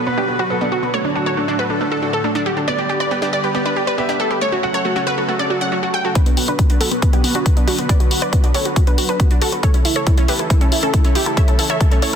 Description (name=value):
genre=uplifting trance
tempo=138 BPM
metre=4/4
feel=straight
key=B minor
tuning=A4 = 439 Hz
part: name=wide unison pluck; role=melody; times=0.0-12.2 s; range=B3 to G5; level=-21 LUFS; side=equal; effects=sidechain pumping, digital delay
part: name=plucky unison lead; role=second line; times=0.0-12.2 s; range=B3 to G5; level=-27 LUFS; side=equal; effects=none
part: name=supersaw pad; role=sustained chords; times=0.0-12.2 s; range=A2 to B4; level=-25 LUFS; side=equal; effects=vintage 12-bit sampler grit, sidechain pumping
part: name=clear grand piano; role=second line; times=0.1-5.0 s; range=F#4 to F#5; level=-26 LUFS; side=left 1 dB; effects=tape echo
part: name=analog pluck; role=arpeggios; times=0.1-12.2 s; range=A3 to B4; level=-26 LUFS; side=right 4 dB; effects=chorus, sidechain pumping, tape echo
part: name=electronic hi-hat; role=drums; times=6.2-12.2 s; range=none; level=-24 LUFS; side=left 4 dB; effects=low-pass filter on hats
part: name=electronic kick drum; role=drums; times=6.2-11.9 s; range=none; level=-14 LUFS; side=equal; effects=none
room=light reverb, digital ambience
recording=dense, heavily limited modern master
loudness=-15 LUFS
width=side -8 dB against mid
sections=0.0-6.2 A section; 6.2-12.2 B section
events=filter sweep on synth pluck 0.0-6.2, 6.2-12.2; build-up 6.2-12.2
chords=0.0 Bm; 0.9 D/A; 2.7 G; 4.4 F#m; 6.2 Bm; 9.6 A